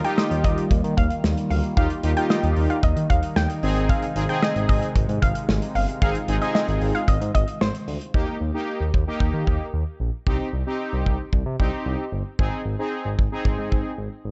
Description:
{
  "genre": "synth-pop",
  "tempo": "113 BPM",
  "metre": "4/4",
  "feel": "straight",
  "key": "Eb major",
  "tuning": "A4 = 440 Hz",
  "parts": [
    { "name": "warbly dusty pluck", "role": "second line", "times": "0.0-8.0 s", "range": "C5 to G5", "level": "-30 LUFS", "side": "equal", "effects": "chorus, slapback echo" },
    { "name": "analog synth brass", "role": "accompaniment", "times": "0.0-13.9 s", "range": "Bb3 to Ab4", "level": "-30 LUFS", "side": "equal", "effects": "chorus" },
    { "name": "phased analog pad", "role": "sustained chords", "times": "0.0-8.1 s", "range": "C3 to F4", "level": "-32 LUFS", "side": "equal", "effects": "phaser, chorus" },
    { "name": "modern studio drum kit", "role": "drums", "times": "0.0-13.8 s", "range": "hi-hat, kick drum, snare drum", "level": "-25 LUFS", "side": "equal", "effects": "none" },
    { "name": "smooth synth bass", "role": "bass", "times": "0.3-14.3 s", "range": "G1 to Eb3", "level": "-28 LUFS", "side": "equal", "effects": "none" }
  ],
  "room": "light reverb, studio reverb",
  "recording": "nothing above 7.9 kHz",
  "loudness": "-23 LUFS",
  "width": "mono",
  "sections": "0.0-8.1 A section; 8.1-14.3 B section",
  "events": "none",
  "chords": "0.0 Ebadd9; 3.6 Ab; 8.1 Eb; 10.3 Cm; 12.4 Ab",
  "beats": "0.18 0.71 1.24 | 1.77 2.30 2.83 3.36 | 3.89 4.42 4.96 5.49 | 6.02 6.55 7.08 7.61 | 8.14 8.67 9.20 9.73 | 10.27 10.80 11.33 11.86 | 12.39 12.92 13.45 13.98"
}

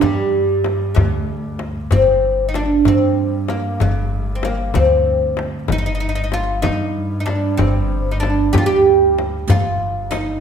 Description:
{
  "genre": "Arabic maqam ensemble",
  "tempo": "63 BPM (dotted quarters)",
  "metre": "6/8",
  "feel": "straight",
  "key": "G maqam bayati",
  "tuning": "A4 = 440 Hz",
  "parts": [
    { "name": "oud", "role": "melody", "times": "0.0-10.4 s", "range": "G3 to G4", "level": "-17 LUFS", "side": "right 2 dB", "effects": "slapback echo" },
    { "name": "upright bass", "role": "bass", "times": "0.0-10.4 s", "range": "G1 to G2", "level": "-23 LUFS", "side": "left 1 dB", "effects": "none" },
    { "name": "rich double bass", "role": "drone", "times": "0.0-10.4 s", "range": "G2", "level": "-28 LUFS", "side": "equal", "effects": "none" },
    { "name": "darbuka", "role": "percussion", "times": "0.0-10.3 s", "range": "none", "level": "-22 LUFS", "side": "right 1 dB", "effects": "none" },
    { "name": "frame drum", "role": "percussion", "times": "0.0-10.3 s", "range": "none", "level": "-24 LUFS", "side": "left 6 dB", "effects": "none" },
    { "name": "riq", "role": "percussion", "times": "9.5-10.3 s", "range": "none", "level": "-32 LUFS", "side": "right 4 dB", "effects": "none" }
  ],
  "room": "moderate recital hall reverb, RT60 1.5 s",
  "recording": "none",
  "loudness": "-15 LUFS",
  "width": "side -7 dB against mid",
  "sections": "0.0-1.9 A section; 1.9-10.4 A section",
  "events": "none",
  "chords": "none",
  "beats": "| 0.02 0.97 | 1.92 2.86 | 3.81 4.75 | 5.70 6.65 | 7.59 8.54 | 9.48"
}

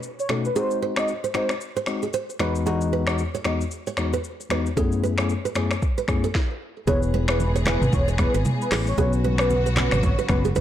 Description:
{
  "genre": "afrobeats",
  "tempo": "114 BPM",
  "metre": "4/4",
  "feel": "swing 58% on 16ths",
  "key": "E major",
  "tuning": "A4 = 440 Hz",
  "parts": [
    { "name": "afro-pop drum kit", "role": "drums", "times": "0.0-10.6 s", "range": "finger snaps, handclaps, hi-hat, kick drum, rim click, shaker, snare drum, toms", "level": "-26 LUFS", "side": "equal", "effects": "vintage 12-bit sampler grit, soft clipping on snare" },
    { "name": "warm velvety synth lead", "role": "melody", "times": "0.2-2.5, 6.9-10.4 s", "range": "B4 to D#5", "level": "-28 LUFS", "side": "right 1 dB", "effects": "chorus" },
    { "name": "tine electric piano", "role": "accompaniment", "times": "0.3-10.5 s", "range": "E2 to B4", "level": "-26 LUFS", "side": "left 3 dB", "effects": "none" },
    { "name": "nylon-string guitar", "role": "riff", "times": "0.3-10.6 s", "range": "G#4 to E5", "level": "-29 LUFS", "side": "right 7 dB", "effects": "none" },
    { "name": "warm studio string section", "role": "sustained chords", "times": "6.9-10.6 s", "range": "C#3 to G#4", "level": "-32 LUFS", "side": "left 1 dB", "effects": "none" },
    { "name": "fingered electric bass", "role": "bass", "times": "6.9-10.6 s", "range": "E1 to B1", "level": "-23 LUFS", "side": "equal", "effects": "none" },
    { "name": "congas", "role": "percussion", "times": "6.9-10.6 s", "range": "none", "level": "-31 LUFS", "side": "right 2 dB", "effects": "none" }
  ],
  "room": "light reverb, digital ambience",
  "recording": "blown-out, overdriven recording, overdrive",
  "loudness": "-21 LUFS",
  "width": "side -11 dB against mid",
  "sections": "0.0-6.9 A section; 6.9-10.6 B section",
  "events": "stop 6.3-6.9",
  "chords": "0.0 B7; 0.6 G#7; 2.4 Emaj7; 4.8 F#m11; 6.9 E; 9.0 Bsus2",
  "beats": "0.03 | 0.56 1.08 1.61 2.14 | 2.66 3.19 3.72 4.24 | 4.77 5.30 5.82 6.35 | 6.88 7.40 7.93 8.45 | 8.98 9.51 10.03 10.56"
}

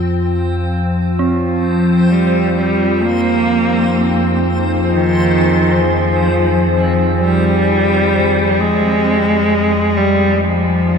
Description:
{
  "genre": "dark ambient drone",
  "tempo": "free time",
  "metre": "none",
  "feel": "none",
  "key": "F minor",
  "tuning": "A4 = 441 Hz",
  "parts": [
    { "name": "analog drone", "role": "drone", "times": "0.0-11.0 s", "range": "F2 to F3", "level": "-16 LUFS", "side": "equal", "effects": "chorus" },
    { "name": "backwards swelling texture", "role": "texture", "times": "0.0-8.6 s", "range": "C4 to C5", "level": "-23 LUFS", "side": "equal", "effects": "built-in reverb" },
    { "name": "warm cello", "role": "melody", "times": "1.2-11.0 s", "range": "Eb3 to Bb3", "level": "-15 LUFS", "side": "equal", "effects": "tape echo" },
    { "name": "deep dark ambient pad", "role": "sustained chords", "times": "3.4-11.0 s", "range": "Eb4 to Ab5", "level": "-21 LUFS", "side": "left 1 dB", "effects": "chorus, built-in reverb" },
    { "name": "dark detuned synth bell", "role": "arpeggios", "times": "1.2-8.6 s", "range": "C4", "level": "-24 LUFS", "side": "right 6 dB", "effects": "chorus, tremolo, tape echo" }
  ],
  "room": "wet cathedral reverb, RT60 5.7 s",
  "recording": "none",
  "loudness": "-12 LUFS",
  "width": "side -6 dB against mid",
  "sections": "0.0-8.6 A section; 8.6-11.0 B section",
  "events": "fade-in on synth texture 0.0-8.6",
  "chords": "0.0 Fm",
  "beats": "free time"
}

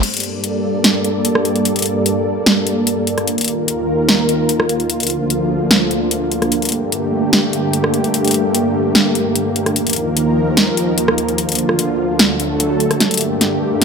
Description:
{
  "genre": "heavy wobble dubstep",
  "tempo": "148 BPM",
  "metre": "4/4",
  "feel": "half-time",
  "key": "G minor",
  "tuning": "A4 = 440 Hz",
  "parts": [
    { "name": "supersaw pad", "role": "sustained chords", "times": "0.0-13.8 s", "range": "D2 to D5", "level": "-16 LUFS", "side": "equal", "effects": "low-pass filter" },
    { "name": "big-room dance drum kit", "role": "drums", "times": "0.0-13.8 s", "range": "crash cymbal, hi-hat, rim click, snare drum", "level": "-16 LUFS", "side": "equal", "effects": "none" }
  ],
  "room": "moderate lush hall reverb, RT60 1.8 s",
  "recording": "none",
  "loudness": "-14 LUFS",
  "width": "side -6 dB against mid",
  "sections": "0.0-13.0 A section",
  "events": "filter sweep on supersaw synth 0.0-13.0; drum fill 13.0-13.8",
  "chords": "0.0 Gmadd9; 3.3 Ebsus2; 4.9 Bb/D; 6.5 Gmadd9; 9.8 Ebsus2; 11.4 Bb/D; 12.2 D; 13.0 Gmadd9",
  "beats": "| 0.03 0.44 0.84 1.25 | 1.65 2.06 2.46 2.87 | 3.27 3.68 4.09 4.49 | 4.90 5.30 5.71 6.11 | 6.52 6.92 7.33 7.74 | 8.14 8.54 8.95 9.36 | 9.76 10.17 10.57 10.98 | 11.38 11.79 12.19 12.60 | 13.01 13.41 13.82"
}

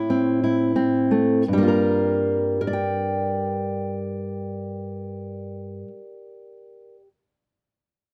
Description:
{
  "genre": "folk",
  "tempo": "80 BPM",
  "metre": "3/4",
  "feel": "straight",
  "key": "G dorian",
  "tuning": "A4 = 441 Hz",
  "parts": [
    { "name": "fingerpicked steel-string acoustic guitar", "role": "accompaniment", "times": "0.0-7.1 s", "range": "G2 to G5", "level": "-24 LUFS", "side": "equal", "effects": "none" }
  ],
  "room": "light reverb",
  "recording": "dry, close 1970s-style studio recording",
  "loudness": "-23 LUFS",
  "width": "mono",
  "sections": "0.0-1.5 A section; 1.5-6.0 B section",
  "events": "slowing down 0.0-1.5",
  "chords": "0.0 Am; 1.5 Gm7",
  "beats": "0.09 0.75 | 1.47 2.23 2.98 | 3.74 4.49 5.25"
}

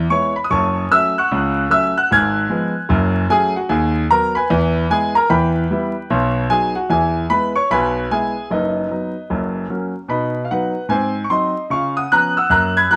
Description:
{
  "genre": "jazz, stride piano",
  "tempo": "150 BPM",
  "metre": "4/4",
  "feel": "swing 63% on 8ths",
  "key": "B major from 3.7 s",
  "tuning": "A4 = 441 Hz",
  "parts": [
    { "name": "clear concert grand piano", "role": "solo", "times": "0.0-13.0 s", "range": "F#1 to Ab6", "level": "-18 LUFS", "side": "equal", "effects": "none" }
  ],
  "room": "moderate studio reverb, RT60 0.8 s",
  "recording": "vinyl crackle",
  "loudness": "-18 LUFS",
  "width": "mono",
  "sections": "0.0-10.1 A section; 10.1-13.0 B section",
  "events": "none",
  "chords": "0.0 E; 0.5 F#m; 2.1 Fdim/Ab; 2.9 F#m; 3.7 B/D#; 4.5 E; 5.3 Em; 6.1 B; 6.9 E; 8.5 B/F#; 9.3 F#; 10.1 B; 10.9 G#7; 11.7 C#7",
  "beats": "0.10 | 0.51 0.91 1.30 1.71 | 2.10 2.50 2.90 3.30 | 3.70 4.10 4.50 4.90 | 5.30 5.70 6.10 6.50 | 6.90 7.30 7.70 8.10 | 8.50 8.90 9.30 9.70 | 10.10 10.50 10.90 11.30 | 11.70 12.10 12.50 12.90"
}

